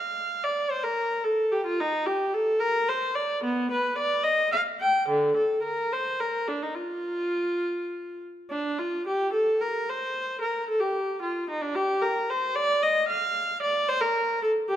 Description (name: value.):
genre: classical, baroque-style suite movement for unaccompanied viola.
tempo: 74 BPM (dotted quarters).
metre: 6/8.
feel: rubato.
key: Bb major.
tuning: A4 = 438 Hz.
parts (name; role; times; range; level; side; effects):
warm viola; solo; 0.0-14.8 s; D3 to G5; -24 LUFS; equal; none.
room: wet recital hall reverb, RT60 1.7 s.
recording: none.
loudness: -24 LUFS.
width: side -11 dB against mid.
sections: 0.0-8.5 A section; 8.5-14.8 A section.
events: none.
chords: none.